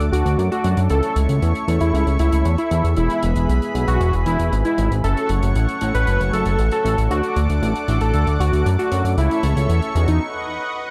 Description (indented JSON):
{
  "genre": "italo disco",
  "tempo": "116 BPM",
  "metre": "4/4",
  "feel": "straight",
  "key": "unclear",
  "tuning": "A4 = 440 Hz",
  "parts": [
    { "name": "lush unison pad", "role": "sustained chords", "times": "0.0-10.9 s", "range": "G#4 to D6", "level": "-30 LUFS", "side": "equal", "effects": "chorus" },
    { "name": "chorused polysynth", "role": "stabs", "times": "0.0-10.2 s", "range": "G#3 to A4", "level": "-31 LUFS", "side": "equal", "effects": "none" },
    { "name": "fat analog bass", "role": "bass", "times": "0.0-10.2 s", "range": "E1 to F#2", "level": "-20 LUFS", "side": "equal", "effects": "tube saturation" },
    { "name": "hi-hat", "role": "drums", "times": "0.0-10.2 s", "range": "none", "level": "-41 LUFS", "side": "equal", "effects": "none" },
    { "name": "unison lead", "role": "melody", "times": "0.1-10.2 s", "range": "D#4 to B4", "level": "-26 LUFS", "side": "equal", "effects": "tape echo" }
  ],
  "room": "light reverb, small room ambience",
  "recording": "dark, warm production, faint mains hum",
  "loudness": "-19 LUFS",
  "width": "mono",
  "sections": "0.0-10.9 A section",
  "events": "break 10.2-10.9",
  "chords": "0.0 D; 0.9 A/C#; 3.0 E; 5.0 F#m; 7.1 D; 9.2 A/C#; 10.2 Badd9"
}